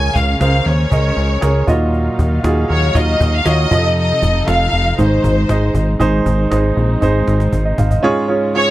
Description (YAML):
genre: piano-driven pop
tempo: 118 BPM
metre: 4/4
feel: straight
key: unclear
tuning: A4 = 440 Hz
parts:
  - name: rich studio violin section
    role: melody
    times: 0.0-8.7 s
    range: C5 to Ab5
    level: -18 LUFS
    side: left 1 dB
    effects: none
  - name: warm grand piano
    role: accompaniment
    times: 0.0-8.7 s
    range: Ab2 to F5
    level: -18 LUFS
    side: right 2 dB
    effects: none
  - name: muted studio string section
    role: sustained chords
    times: 0.0-8.7 s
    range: Db3 to F5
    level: -26 LUFS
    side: equal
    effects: none
  - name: plucky analog bass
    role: bass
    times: 0.0-8.0 s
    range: F1 to F2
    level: -16 LUFS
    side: equal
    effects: none
  - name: cajon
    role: drums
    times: 0.2-8.0 s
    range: none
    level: -23 LUFS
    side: equal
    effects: none
room: little or no reverb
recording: dry, close 1970s-style studio recording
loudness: -12 LUFS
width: side -15 dB against mid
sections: 0.0-6.0 A section; 6.0-8.0 B section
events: drum fill 7.0-8.0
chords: 0.0 Bbm7/Db; 1.7 Ebmadd9; 3.7 F7; 5.0 Ab; 8.0 Db